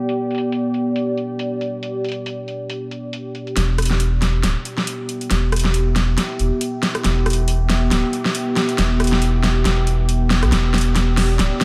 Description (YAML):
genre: deep dubstep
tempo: 138 BPM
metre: 4/4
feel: swing 56% on 16ths, half-time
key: E minor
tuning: A4 = 435 Hz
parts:
  - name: deep dark ambient pad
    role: sustained chords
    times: 0.0-11.6 s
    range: B3 to E5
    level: -25 LUFS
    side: equal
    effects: chorus, built-in reverb
  - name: dubstep drum kit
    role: drums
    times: 0.1-11.6 s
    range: hi-hat, rim click, snare drum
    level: -24 LUFS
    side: equal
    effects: low-pass filter on hats, low-pass filter on snare
  - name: soft dub sub bass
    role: bass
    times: 3.6-11.5 s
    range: D1 to B1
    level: -20 LUFS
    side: equal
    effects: none
room: light reverb, digital ambience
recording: low-pass filter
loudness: -20 LUFS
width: mono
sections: 0.0-3.6 A section; 3.6-11.6 B section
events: filter sweep 0.0-3.6; build-up 3.6-11.6; drum fill 3.6-11.6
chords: 0.0 Em (rootless); 3.6 Em